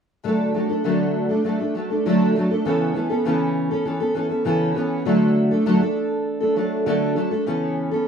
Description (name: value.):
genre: pop.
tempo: 100 BPM.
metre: 4/4.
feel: straight.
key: D major.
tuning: A4 = 439 Hz.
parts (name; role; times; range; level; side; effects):
fingerpicked steel-string acoustic guitar; accompaniment; 0.2-8.1 s; C#3 to A4; -19 LUFS; equal; double-tracked left and right.
room: wet studio reverb, RT60 0.6 s.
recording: rough home demo mix.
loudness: -19 LUFS.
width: side -7 dB against mid.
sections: 0.2-5.1 A section; 5.1-8.1 B section.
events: none.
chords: 0.2 D; 2.6 Aadd9/C#; 5.1 D; 7.5 Aadd9/C#.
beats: | 0.24 0.84 1.45 2.05 | 2.65 3.25 3.85 4.45 | 5.05 5.66 6.26 6.86 | 7.46 8.06.